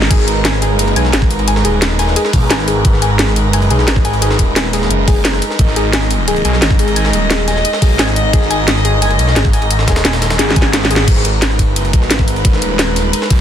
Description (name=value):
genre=dark technical drum and bass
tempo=175 BPM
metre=4/4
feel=straight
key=G# minor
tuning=A4 = 440 Hz
part: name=warm chamber string section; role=sustained chords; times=0.0-13.4 s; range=G#3 to D#5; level=-19 LUFS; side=right 1 dB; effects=sidechain pumping
part: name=phased detuned saw bass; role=bass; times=0.0-13.4 s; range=D#1 to B1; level=-15 LUFS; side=equal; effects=phaser, tube saturation
part: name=breakbeat sampler-style drum kit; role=drums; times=0.0-13.4 s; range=hi-hat, ride cymbal, snare drum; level=-24 LUFS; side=right 1 dB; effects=high-pass filter on cymbals, high-pass filter on snare, high-pass filter on hats, high-pass filter on room
part: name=drum and bass drum kit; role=drums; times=0.0-13.4 s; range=crash cymbal, hi-hat, snare drum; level=-17 LUFS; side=equal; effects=none
part: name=warbly dusty pluck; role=arpeggios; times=0.1-11.0 s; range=G#4 to G#5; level=-21 LUFS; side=left 3 dB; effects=chorus, cassette tape, sidechain pumping, digital delay
part: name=electronic kick drum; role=drums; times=0.1-13.4 s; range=none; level=-13 LUFS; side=equal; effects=none
room=light reverb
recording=dense, heavily limited modern master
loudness=-11 LUFS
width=side -9 dB against mid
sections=0.0-11.1 A section; 11.1-13.4 A section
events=drop 0.0-11.1, 11.1-13.4; drum fill 10.4-11.1; band accent 11.0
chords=0.0 G#m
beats=| 0.11 0.45 0.79 1.13 | 1.48 1.82 2.16 2.51 | 2.85 3.19 3.53 3.88 | 4.22 4.56 4.91 5.25 | 5.59 5.93 6.28 6.62 | 6.96 7.31 7.65 7.99 | 8.33 8.68 9.02 9.36 | 9.71 10.05 10.39 10.73 | 11.08 11.42 11.76 12.11 | 12.45 12.79 13.13